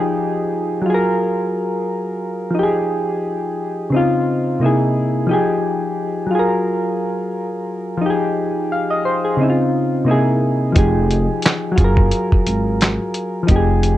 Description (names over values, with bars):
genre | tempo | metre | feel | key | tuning
lo-fi hip hop | 88 BPM | 4/4 | swing 57% on 16ths | F phrygian | A4 = 440 Hz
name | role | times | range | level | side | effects
soft electric-piano-like synth keys | accompaniment | 0.0-14.0 s | C3 to F5 | -17 LUFS | equal | chorus, cassette tape, low-pass filter, plate reverb
upright bass | bass | 10.8-14.0 s | F1 to Ab1 | -17 LUFS | equal | none
dusty soul sampler-style drum kit | drums | 10.8-14.0 s | handclaps, hi-hat, kick drum, snare drum | -15 LUFS | equal | none
room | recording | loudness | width
moderate small room reverb, RT60 0.5 s | cassette tape | -16 LUFS | side -14 dB against mid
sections
0.0-14.0 A section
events
none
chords
0.0 Fm9; 0.9 Gbmaj9; 2.6 Fm9; 3.9 Dbmaj9; 4.6 C7alt; 5.3 Fm9; 6.3 Gbmaj9; 8.0 Fm9; 9.4 Dbmaj9; 10.1 C7alt; 10.8 Fm9; 11.8 Gbmaj9